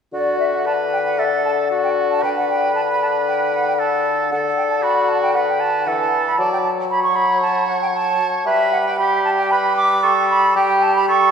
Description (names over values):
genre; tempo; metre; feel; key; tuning
quick classical-period movement for symphony orchestra; 115 BPM; 4/4; rubato; D major; A4 = 436 Hz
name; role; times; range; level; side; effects
clear oboe; second line; 0.1-11.3 s; F#4 to D5; -22 LUFS; right 3 dB; none
concert flute; second line; 0.1-11.3 s; D5 to D6; -18 LUFS; right 2 dB; none
warm bassoon; accompaniment; 0.1-11.3 s; D3 to G3; -20 LUFS; left 4 dB; none
room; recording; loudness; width
wet concert hall reverb, RT60 2.4 s; heard from further back in the room; -15 LUFS; side -7 dB against mid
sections
0.1-11.3 A section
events
none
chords
0.1 D; 6.4 D/F# (rootless); 8.5 Gadd9